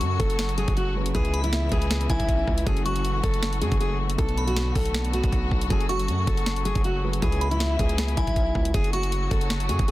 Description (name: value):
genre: hip hop, trap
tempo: 158 BPM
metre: 4/4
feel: half-time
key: F# minor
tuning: A4 = 440 Hz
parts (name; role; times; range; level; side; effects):
- fingerpicked steel-string acoustic guitar; melody; 0.0-9.9 s; E4 to A4; -29 LUFS; equal; none
- glassy synth bell; second line; 0.0-9.9 s; G#5 to C#6; -34 LUFS; left 1 dB; chorus, phaser, digital delay
- dark grand piano; accompaniment; 0.0-8.8 s; B2 to B4; -34 LUFS; equal; none
- rich studio string section; sustained chords; 0.0-9.9 s; C#3 to F#4; -34 LUFS; left 2 dB; none
- distorted 808-style bass; bass; 0.0-9.9 s; F#1 to F#2; -26 LUFS; equal; distortion
- trap drum kit; drums; 0.0-9.9 s; hi-hat, kick drum, snare drum; -26 LUFS; equal; none
room: small room ambience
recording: dense, heavily limited modern master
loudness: -22 LUFS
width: side -16 dB against mid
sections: 0.0-8.7 A section; 8.7-9.9 A section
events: none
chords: 0.0 F#madd9; 1.1 C#m7; 2.7 F#madd9; 4.2 Bm7; 5.7 F#madd9; 7.2 C#m7; 8.7 F#m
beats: 0.01 0.39 0.77 | 1.15 1.53 1.91 2.29 | 2.67 3.05 3.43 3.81 | 4.18 4.57 4.95 5.32 | 5.70 6.08 6.46 6.84 | 7.22 7.60 7.98 8.36 | 8.74 9.12 9.50 9.88